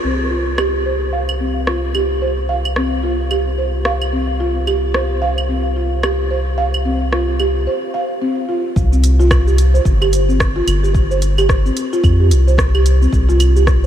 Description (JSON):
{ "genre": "organic downtempo", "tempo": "110 BPM", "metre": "4/4", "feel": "swing 60% on 16ths", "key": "unclear", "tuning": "A4 = 440 Hz", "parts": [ { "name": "buzzing marimba with soft mallets", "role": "arpeggios", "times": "0.0-13.9 s", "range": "C4 to F5", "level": "-19 LUFS", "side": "right 1 dB", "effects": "low-pass filter, ping-pong delay" }, { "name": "round analog bass", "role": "bass", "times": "0.0-13.9 s", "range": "G1 to F2", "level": "-16 LUFS", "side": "equal", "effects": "sidechain pumping" }, { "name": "organic electronic drum kit", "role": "drums", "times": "0.6-13.9 s", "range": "claves, hi-hat, rim click, shaker", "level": "-24 LUFS", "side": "right 1 dB", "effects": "studio ambience" }, { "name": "electronic kick drum", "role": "drums", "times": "8.8-13.8 s", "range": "none", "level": "-16 LUFS", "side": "equal", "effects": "studio ambience" } ], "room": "light reverb, digital ambience", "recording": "none", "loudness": "-14 LUFS", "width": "side -10 dB against mid", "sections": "0.0-8.8 A section; 8.8-13.9 B section", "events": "break 7.7-8.8", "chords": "0.0 Csus4", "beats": "| 0.04 0.58 1.13 1.67 | 2.22 2.76 3.31 3.85 | 4.40 4.95 5.49 6.04 | 6.58 7.13 7.67 8.22 | 8.76 9.31 9.85 10.40 | 10.95 11.49 12.04 12.58 | 13.13 13.67" }